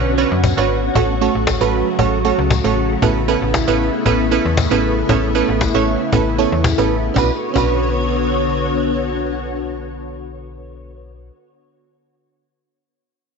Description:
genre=dance-pop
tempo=116 BPM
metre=4/4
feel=straight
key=B minor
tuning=A4 = 435 Hz
part: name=wavetable chord stab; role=accompaniment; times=0.0-11.3 s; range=A3 to C#5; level=-18 LUFS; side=right 9 dB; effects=none
part: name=soft string machine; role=sustained chords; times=0.0-10.9 s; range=C#3 to C#5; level=-20 LUFS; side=left 1 dB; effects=phaser, ensemble chorus
part: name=slap-like FM bass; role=bass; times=0.0-11.3 s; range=G#1 to F#2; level=-21 LUFS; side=left 2 dB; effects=none
part: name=cajon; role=drums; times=0.1-7.7 s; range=none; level=-20 LUFS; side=left 3 dB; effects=none
part: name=tambourine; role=percussion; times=0.4-7.7 s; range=none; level=-32 LUFS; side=left 15 dB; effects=none
room=moderate echo chamber reverb, RT60 1.7 s, studio reverb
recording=1960s-style stereo with parts hard left and right, nothing above 7.7 kHz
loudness=-14 LUFS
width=side -5 dB against mid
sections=0.0-7.2 A section; 7.2-11.3 B section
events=none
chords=0.0 Bmadd9; 1.0 F#m/A; 3.0 Aadd9; 7.2 Bmadd9

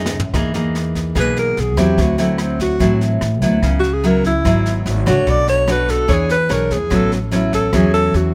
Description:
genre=bossa nova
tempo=146 BPM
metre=4/4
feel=straight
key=unclear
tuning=A4 = 440 Hz
part: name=nylon-string guitar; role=accompaniment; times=0.0-8.3 s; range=F#2 to C#5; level=-20 LUFS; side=equal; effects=none
part: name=upright bass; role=bass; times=0.0-8.3 s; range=G#1 to F#2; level=-22 LUFS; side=equal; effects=none
part: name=jazz brush drum kit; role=drums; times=0.1-8.2 s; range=kick drum, rim click, snare drum, toms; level=-26 LUFS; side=equal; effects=none
part: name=breathy alto saxophone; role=melody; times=1.2-8.3 s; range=A3 to D5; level=-21 LUFS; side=equal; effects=none
room=little or no reverb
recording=none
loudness=-16 LUFS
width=mono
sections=0.0-8.3 A section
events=drum fill 0.0-0.3; alto saxophone solo 0.0-8.3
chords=0.3 Emaj9#11; 2.0 D9; 3.6 C#m7; 5.3 Bm7; 6.1 E6; 6.9 A69

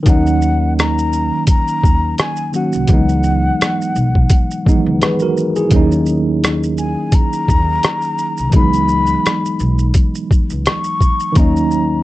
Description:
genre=lo-fi hip hop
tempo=85 BPM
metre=4/4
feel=swing 57% on 16ths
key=unclear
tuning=A4 = 440 Hz
part: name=mellow tine electric piano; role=accompaniment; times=0.0-12.0 s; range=D#3 to B4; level=-17 LUFS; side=right 1 dB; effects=slow stereo tremolo
part: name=breathy mellow concert flute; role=melody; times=0.1-12.0 s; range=F#5 to C#6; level=-20 LUFS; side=left 2 dB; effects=none
part: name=upright bass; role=bass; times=0.1-12.0 s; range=B1 to D#2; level=-19 LUFS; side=equal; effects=none
part: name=lo-fi sampler-style drum kit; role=drums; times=0.1-11.9 s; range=hi-hat, kick drum, rim click, shaker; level=-14 LUFS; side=equal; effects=none
room=light reverb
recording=cassette tape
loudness=-12 LUFS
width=side -16 dB against mid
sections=0.1-12.0 A section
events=none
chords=0.1 D#m7; 2.9 C#m11; 5.7 D#m7; 8.5 C#m11; 11.4 D#m7

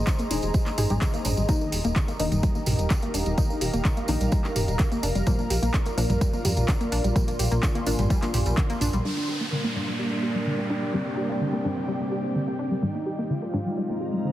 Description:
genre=melodic techno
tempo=127 BPM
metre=4/4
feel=straight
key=G phrygian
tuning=A4 = 440 Hz
part: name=dark analog pad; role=sustained chords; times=0.0-14.3 s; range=G3 to C6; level=-33 LUFS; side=equal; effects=chorus, sidechain pumping
part: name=filtered dub chord stab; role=stabs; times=0.0-14.3 s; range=G2 to Ab4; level=-33 LUFS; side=left 2 dB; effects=chorus, sidechain pumping, digital delay
part: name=swelling detuned saw bass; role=bass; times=0.0-9.0 s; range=Eb1 to F2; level=-26 LUFS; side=equal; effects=sidechain pumping
part: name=ethereal airy pad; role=texture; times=0.0-14.3 s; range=Ab3 to C6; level=-35 LUFS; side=equal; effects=ensemble chorus, built-in reverb, tremolo, sidechain pumping
part: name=analog pluck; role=arpeggios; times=0.1-14.3 s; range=D3 to G4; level=-30 LUFS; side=equal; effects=chorus, cassette tape, sidechain pumping, digital delay
part: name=deep house drum kit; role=drums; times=0.1-9.0 s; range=handclaps, hi-hat, toms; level=-31 LUFS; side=equal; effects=overdrive, low-pass filter on hats, low-pass filter on cymbals, low-pass filter on snare, low-pass filter on toms, low-pass filter on room
part: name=electronic kick drum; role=drums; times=0.1-8.7 s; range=none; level=-24 LUFS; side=equal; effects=overdrive
part: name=tambourine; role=percussion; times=0.1-9.0 s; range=none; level=-37 LUFS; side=right 3 dB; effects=none
part: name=wide unison lead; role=melody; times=9.0-14.3 s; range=Bb3 to F4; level=-31 LUFS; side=right 1 dB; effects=sidechain pumping, tape echo
part: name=downlifter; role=sound effects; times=9.0-12.8 s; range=none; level=-35 LUFS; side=equal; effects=none
room=light reverb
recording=heavily compressed radio sound, multiband compression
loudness=-23 LUFS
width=side -14 dB against mid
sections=0.0-9.0 A section; 9.0-14.3 B section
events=filter sweep on synth arpeggio sound 0.0-9.0, 9.0-14.3; band accent 8.6; filter sweep on analog synth lead 9.0-14.3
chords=0.0 Ab; 1.5 Eb; 5.3 Bb; 9.0 Gm; 12.8 Ab

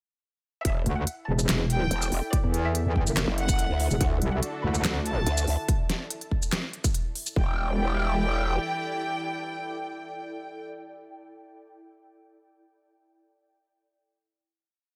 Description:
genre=heavy wobble dubstep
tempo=143 BPM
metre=4/4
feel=half-time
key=E minor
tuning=A4 = 440 Hz
part: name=rich chamber violin section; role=melody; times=0.6-10.7 s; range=D5 to B5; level=-36 LUFS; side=equal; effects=dub echo
part: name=growl bass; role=bass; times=0.7-8.6 s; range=E1 to D2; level=-29 LUFS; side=equal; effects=distortion, chorus, overdrive
part: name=dubstep drum kit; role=drums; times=0.7-7.3 s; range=handclaps, hi-hat, shaker, snare drum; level=-32 LUFS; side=equal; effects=studio reverb
part: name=electronic kick drum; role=drums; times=0.7-7.5 s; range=none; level=-29 LUFS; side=equal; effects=studio reverb
part: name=ethereal airy pad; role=texture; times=1.3-10.8 s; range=E4 to G5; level=-41 LUFS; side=equal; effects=ensemble chorus, built-in reverb, phaser, sidechain pumping
part: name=metallic wobble bass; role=bass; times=0.9-5.2 s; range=E1 to E2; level=-28 LUFS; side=equal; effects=chorus, overdrive
part: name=supersaw pad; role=sustained chords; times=4.0-10.7 s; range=D3 to D5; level=-40 LUFS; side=equal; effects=sidechain pumping
room=light reverb, digital ambience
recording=none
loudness=-27 LUFS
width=mono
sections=0.7-7.4 drop; 7.4-10.7 final chord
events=drop 0.7-7.4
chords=0.7 Em7; 4.0 D; 7.4 Em7

